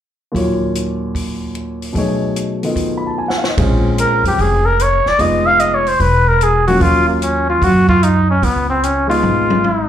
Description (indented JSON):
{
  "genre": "jazz, small-group swing and bop",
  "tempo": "148 BPM",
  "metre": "4/4",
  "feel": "swing 67% on 8ths",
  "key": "unclear",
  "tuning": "A4 = 440 Hz",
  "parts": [
    { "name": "warm grand piano", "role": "accompaniment", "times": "0.3-9.6 s", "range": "Eb2 to B5", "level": "-18 LUFS", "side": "left 1 dB", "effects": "slapback echo" },
    { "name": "compact cocktail drum kit", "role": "drums", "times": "0.3-9.8 s", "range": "hi-hat, kick drum, ride cymbal, snare drum, toms", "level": "-23 LUFS", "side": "left 1 dB", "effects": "none" },
    { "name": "upright bass", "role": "bass", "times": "3.6-9.9 s", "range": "E1 to Gb2", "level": "-16 LUFS", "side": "right 1 dB", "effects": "none" },
    { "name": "warm trumpet", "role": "melody", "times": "4.0-9.9 s", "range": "Bb3 to F5", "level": "-14 LUFS", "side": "equal", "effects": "slapback echo" }
  ],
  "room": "moderate club ambience, RT60 0.5 s",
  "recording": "live gig heard through the venue's PA, club reverb",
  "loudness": "-12 LUFS",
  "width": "side -10 dB against mid",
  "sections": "0.3-3.6 A section; 3.6-9.9 B section",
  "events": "drum fill 3.2-3.6, 9.2-9.9",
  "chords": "0.3 Ebm9; 2.0 B13; 3.6 Bbm7; 5.2 Fm7b5; 6.0 Esus2; 6.8 Ebm9; 8.4 Db7"
}